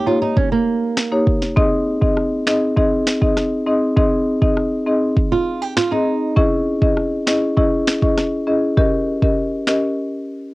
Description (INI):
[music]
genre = dancehall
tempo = 100 BPM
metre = 4/4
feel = straight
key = Ab major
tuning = A4 = 440 Hz
[part]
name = flamenco guitar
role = arpeggios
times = 0.0-1.4, 5.3-6.3 s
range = Bb3 to G4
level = -19 LUFS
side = right 4 dB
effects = none
[part]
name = marimba with medium mallets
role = accompaniment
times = 0.1-9.8 s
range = Bb3 to Eb5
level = -18 LUFS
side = left 1 dB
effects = none
[part]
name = afro-pop drum kit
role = drums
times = 0.4-9.8 s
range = finger snaps, kick drum, rim click, snare drum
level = -18 LUFS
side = equal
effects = vintage 12-bit sampler grit
[sound]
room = little or no reverb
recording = home recording on cassette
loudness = -15 LUFS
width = side -20 dB against mid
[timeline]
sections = 0.0-10.5 A section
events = break 10.0-10.5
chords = 0.0 Eb7; 1.6 Ab; 6.4 Dbmadd9; 8.8 Eb7